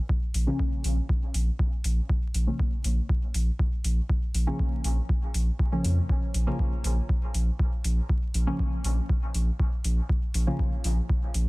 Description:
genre	dub techno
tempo	120 BPM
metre	4/4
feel	straight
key	Bb minor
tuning	A4 = 436 Hz
part	electronic kick drum	drums	0.1-11.2 s	none	-27 LUFS	equal	none
part	soft dub sub bass	bass	0.3-11.5 s	Bb1 to F2	-24 LUFS	equal	sidechain pumping
part	electronic hi-hat	drums	0.3-11.4 s	none	-36 LUFS	equal	none
part	deep mellow chord stab	stabs	0.5-10.7 s	Db3 to Db4	-33 LUFS	left 1 dB	chorus, phaser, sidechain pumping, dub echo
room	little or no reverb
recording	dense, heavily limited modern master, vinyl crackle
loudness	-24 LUFS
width	side -22 dB against mid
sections	0.0-11.5 A section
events	none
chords	0.0 Bbm

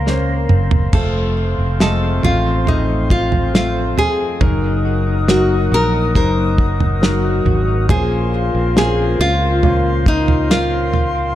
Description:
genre	pop ballad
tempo	69 BPM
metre	4/4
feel	straight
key	unclear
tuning	A4 = 441 Hz
part	warm grand piano	accompaniment	0.0-11.3 s	Bb2 to Eb5	-24 LUFS	equal	none
part	warm woodwind section	sustained chords	0.0-11.3 s	A3 to Eb6	-26 LUFS	left 1 dB	none
part	direct-recorded clean electric guitar	arpeggios	0.0-11.3 s	F2 to Bb4	-29 LUFS	left 7 dB	lush chorus, ping-pong delay
part	fretless electric bass	bass	0.0-11.3 s	F1 to Db2	-18 LUFS	equal	none
part	damped 70s drum kit	drums	0.1-11.1 s	crash cymbal, kick drum, snare drum, toms	-17 LUFS	right 1 dB	none
part	nylon-string guitar	melody	0.9-11.3 s	Eb4 to Bb4	-20 LUFS	equal	ping-pong delay
part	dark French horn section	second line	0.9-11.1 s	C4 to Gb4	-25 LUFS	left 3 dB	none
room	light reverb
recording	dark, warm production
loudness	-13 LUFS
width	side -13 dB against mid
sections	0.9-11.3 A section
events	drum fill 0.1-0.9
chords	0.0 Bbmadd9; 0.9 F; 4.4 Ebm/Gb; 7.9 Bbmadd9

